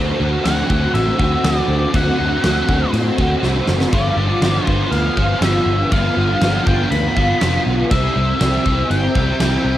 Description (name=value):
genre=rock, shoegaze and dream pop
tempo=121 BPM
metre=4/4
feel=straight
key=G major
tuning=A4 = 441 Hz
part: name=biting overdriven guitar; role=riff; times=0.0-9.8 s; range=G2 to F#4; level=-18 LUFS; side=equal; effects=ensemble chorus, cassette tape
part: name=vintage muted picked electric bass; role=bass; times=0.0-9.8 s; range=F1 to A2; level=-19 LUFS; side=equal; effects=transformer saturation
part: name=octave-fuzz lead guitar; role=melody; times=0.4-9.8 s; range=D5 to B5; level=-23 LUFS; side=left 1 dB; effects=distortion, cassette tape, analog delay
part: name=big rock drum kit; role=drums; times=0.5-9.5 s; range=crash cymbal, kick drum, snare drum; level=-21 LUFS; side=equal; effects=none
room=light reverb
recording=home recording on cassette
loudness=-14 LUFS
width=side -13 dB against mid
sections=0.0-9.8 A section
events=drum fill 3.4-3.9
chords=0.0 D7; 3.9 G7; 7.9 C